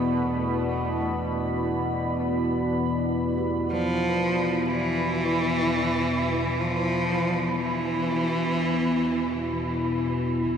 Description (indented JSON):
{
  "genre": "dark ambient drone",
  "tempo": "62 BPM",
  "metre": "4/4",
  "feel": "straight",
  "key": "unclear",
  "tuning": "A4 = 441 Hz",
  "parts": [
    { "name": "rich cello", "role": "melody", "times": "0.0-10.0 s", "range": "E3 to A3", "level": "-28 LUFS", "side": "right 1 dB", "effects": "shimmer reverb, tape echo" },
    { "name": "deep dark ambient pad", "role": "sustained chords", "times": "0.0-10.6 s", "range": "B3 to B5", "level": "-29 LUFS", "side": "right 1 dB", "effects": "chorus, built-in reverb, shimmer reverb" },
    { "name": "analog drone", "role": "drone", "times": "0.0-10.6 s", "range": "E2 to B2", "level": "-27 LUFS", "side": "left 1 dB", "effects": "chorus, phaser" },
    { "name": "flickering grainy texture", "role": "texture", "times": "0.0-10.6 s", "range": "B4", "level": "-44 LUFS", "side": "right 2 dB", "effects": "none" },
    { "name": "gamelan-type bossed gongs", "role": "arpeggios", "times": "0.2-9.9 s", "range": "B2 to B4", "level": "-40 LUFS", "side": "left 1 dB", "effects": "none" },
    { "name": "taiko ensemble", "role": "percussion", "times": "10.5-10.6 s", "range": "none", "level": "-42 LUFS", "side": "equal", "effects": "none" }
  ],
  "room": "wet huge ambient reverb, RT60 7.8 s",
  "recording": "none",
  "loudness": "-23 LUFS",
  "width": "side -7 dB against mid",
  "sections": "0.0-10.5 A section",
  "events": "none",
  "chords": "0.0 E5"
}